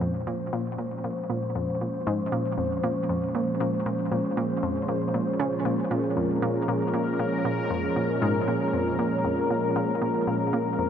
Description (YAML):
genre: ambient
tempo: 117 BPM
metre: 4/4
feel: straight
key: Bb minor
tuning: A4 = 440 Hz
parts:
  - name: sweeping resonant pad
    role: sustained chords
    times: 0.0-10.9 s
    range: Bb2 to C5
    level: -26 LUFS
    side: equal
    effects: chorus
  - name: analog pluck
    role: riff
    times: 0.0-10.9 s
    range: F2 to Db3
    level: -29 LUFS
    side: equal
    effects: chorus, vintage 12-bit sampler grit, tape echo
  - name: wind-like tuned noise texture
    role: texture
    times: 0.1-10.9 s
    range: Db4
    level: -42 LUFS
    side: right 2 dB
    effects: none
room: wet huge ambient reverb, RT60 8.1 s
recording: none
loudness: -24 LUFS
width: side -8 dB against mid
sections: 0.0-10.9 A section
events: none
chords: 0.0 Bbm7